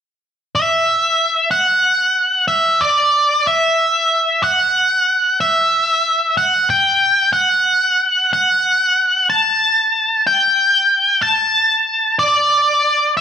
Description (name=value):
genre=rock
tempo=62 BPM (dotted quarters)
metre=6/8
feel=straight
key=E minor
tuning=A4 = 440 Hz
part: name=octave-fuzz lead guitar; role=melody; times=0.6-13.2 s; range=D5 to A5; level=-13 LUFS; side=equal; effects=distortion
room=wet large studio reverb, RT60 1.4 s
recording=band playing live in one room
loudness=-13 LUFS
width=side -8 dB against mid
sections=0.0-1.5 A section; 1.5-13.2 B section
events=none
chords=none